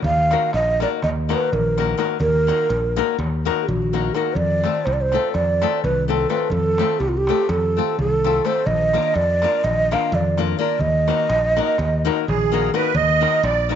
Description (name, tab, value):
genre	balkan folk, Balkan wedding band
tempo	251 BPM (eighths)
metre	9/8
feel	straight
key	Eb harmonic minor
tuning	A4 = 440 Hz
part	modern bright fingered electric bass	bass	0.0-13.7 s	Bb1 to F2	-23 LUFS	equal	none
part	darbuka	percussion	0.0-13.8 s	none	-27 LUFS	left 1 dB	none
part	breathy mellow ney	melody	0.1-13.8 s	F4 to F5	-20 LUFS	right 2 dB	tape echo
part	flamenco guitar	accompaniment	0.3-13.8 s	A3 to Bb4	-24 LUFS	left 14 dB	none
part	musette accordion	second line	12.3-13.8 s	Ab4 to Eb5	-22 LUFS	right 12 dB	none
room	light reverb, small room ambience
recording	1960s-style stereo with parts hard left and right, nothing above 7.7 kHz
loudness	-17 LUFS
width	side -9 dB against mid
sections	0.0-12.9 A section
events	none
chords	0.0 Ebm; 4.4 F; 8.7 Bb; 10.8 Ebm